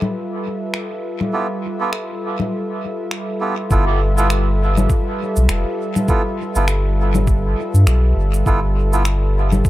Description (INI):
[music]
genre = ambient dub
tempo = 101 BPM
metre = 4/4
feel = swing 59% on 16ths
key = G mixolydian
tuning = A4 = 436 Hz
[part]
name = warm analog pad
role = sustained chords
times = 0.0-9.7 s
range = G3 to E5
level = -24 LUFS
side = right 1 dB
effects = chorus
[part]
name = electronic congas, finger snaps and shaker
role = drums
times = 0.0-9.7 s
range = none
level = -24 LUFS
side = left 2 dB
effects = dub echo
[part]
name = melodica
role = stabs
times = 1.3-9.0 s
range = B3 to A4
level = -24 LUFS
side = right 2 dB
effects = dub echo
[part]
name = warm sub bass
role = bass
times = 3.7-9.6 s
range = F1 to G2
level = -16 LUFS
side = equal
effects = none
[part]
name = electronic kick drum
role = drums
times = 3.7-9.7 s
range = none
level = -18 LUFS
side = equal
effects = none
[sound]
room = digital ambience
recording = none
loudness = -16 LUFS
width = side -15 dB against mid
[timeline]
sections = 0.0-3.7 A section; 3.7-9.7 B section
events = none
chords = 0.0 G13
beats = 0.14 0.74 | 1.33 1.93 2.52 3.11 | 3.71 4.30 4.90 5.49 | 6.08 6.68 7.27 7.87 | 8.46 9.05 9.65